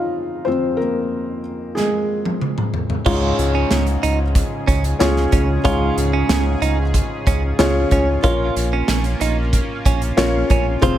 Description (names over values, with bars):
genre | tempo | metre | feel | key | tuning
piano-driven pop | 93 BPM | 4/4 | straight | unclear | A4 = 440 Hz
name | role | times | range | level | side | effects
felt-muted upright piano | accompaniment | 0.0-11.0 s | F2 to F5 | -20 LUFS | left 2 dB | none
modern studio drum kit | drums | 1.8-11.0 s | crash cymbal, hi-hat, kick drum, snare drum, toms | -21 LUFS | right 1 dB | none
chorused pulse-width pad | sustained chords | 3.9-11.0 s | Db3 to Ab4 | -28 LUFS | right 2 dB | none
direct-recorded clean electric guitar | riff | 3.1-11.0 s | Db4 to F4 | -25 LUFS | right 8 dB | none
round analog bass | bass | 3.1-11.0 s | F1 to Db2 | -20 LUFS | equal | none
room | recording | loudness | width
light reverb, small room ambience | none | -16 LUFS | side -12 dB against mid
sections
0.0-3.1 A section; 3.1-11.0 B section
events
felt piano solo 0.0-3.1; drum fill 1.8-3.1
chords
0.0 Dbmaj7/F; 3.1 Db; 8.2 Bbm